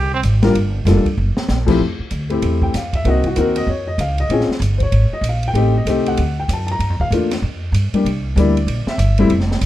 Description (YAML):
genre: jazz, small-group swing and bop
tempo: 192 BPM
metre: 4/4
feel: swing 61% on 8ths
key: F major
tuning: A4 = 441 Hz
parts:
  - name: upright bass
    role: bass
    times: 0.0-9.7 s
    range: F1 to G2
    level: -18 LUFS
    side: right 1 dB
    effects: none
  - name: open jazz drum kit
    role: drums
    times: 0.2-9.7 s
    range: crash cymbal, hi-hat, kick drum, ride cymbal, snare drum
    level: -26 LUFS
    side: right 1 dB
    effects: none
  - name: warm upright piano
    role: accompaniment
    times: 0.4-9.3 s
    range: F3 to Bb5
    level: -18 LUFS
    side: left 2 dB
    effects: none
room: light reverb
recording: dark, warm production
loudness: -15 LUFS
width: side -14 dB against mid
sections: 0.0-1.8 A section; 1.8-9.7 A section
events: drum fill 1.2-1.5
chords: 0.0 Abmaj13; 0.5 Gm9; 1.2 Gb7; 1.8 Fmaj7; 3.0 Cm7b5; 3.7 Dbadd9; 4.3 Bbm9; 5.6 Am7b5; 6.2 D; 6.8 Gm7; 8.1 C9